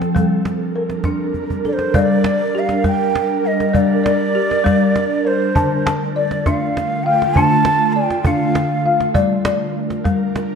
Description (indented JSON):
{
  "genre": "world meditative, meditative tuned percussion",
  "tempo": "67 BPM (dotted quarters)",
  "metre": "6/8",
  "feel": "straight",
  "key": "G minor",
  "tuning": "A4 = 438 Hz",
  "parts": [
    { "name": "ethereal airy pad", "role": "sustained chords", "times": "0.0-10.6 s", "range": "D3 to Bb4", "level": "-20 LUFS", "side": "right 3 dB", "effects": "ensemble chorus, built-in reverb" },
    { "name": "folk marimba with medium mallets", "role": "arpeggios", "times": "0.0-10.6 s", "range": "D3 to A5", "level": "-19 LUFS", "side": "left 4 dB", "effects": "none" },
    { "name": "cajon", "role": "percussion", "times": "0.0-10.5 s", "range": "none", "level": "-22 LUFS", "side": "right 2 dB", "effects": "none" },
    { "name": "breathy hollow bansuri", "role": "melody", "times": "1.7-8.9 s", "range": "C5 to A5", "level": "-20 LUFS", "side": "right 3 dB", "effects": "tape echo" }
  ],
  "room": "wet echo chamber reverb, RT60 1.5 s",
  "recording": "dark, warm production",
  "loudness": "-15 LUFS",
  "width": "side -6 dB against mid",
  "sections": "0.0-2.0 A section; 2.0-10.6 B section",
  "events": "drum fill 1.4-2.0",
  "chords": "0.2 Gm; 5.6 Dm; 9.2 Gm"
}